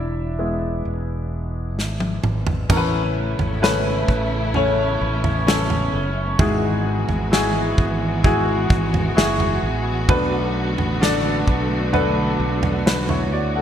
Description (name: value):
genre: pop ballad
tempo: 65 BPM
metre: 4/4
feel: straight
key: A major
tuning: A4 = 442 Hz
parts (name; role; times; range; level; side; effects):
- clear concert grand piano; accompaniment; 0.0-13.6 s; G#2 to F#5; -22 LUFS; left 2 dB; wide subtle chorus
- fretless electric bass; bass; 0.0-13.6 s; E1 to D2; -24 LUFS; equal; analog chorus
- natural country drum kit; drums; 1.8-13.3 s; crash cymbal, kick drum, snare drum, toms; -21 LUFS; right 1 dB; gated reverb
- warm studio string section; sustained chords; 2.7-13.6 s; C#3 to F#4; -26 LUFS; right 1 dB; none
room: moderate lush hall reverb, RT60 2.6 s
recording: bright 1980s-style digital production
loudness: -18 LUFS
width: side -9 dB against mid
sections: 0.0-2.7 A section; 2.7-13.6 B section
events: grand piano solo 0.0-2.7; drum fill 1.8-2.7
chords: 0.0 E; 2.7 Aadd9; 6.4 Eadd9/G#; 10.1 Bm7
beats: 0.85 1.78 | 2.70 3.62 4.55 5.47 | 6.39 7.32 8.24 9.16 | 10.09 11.01 11.93 12.86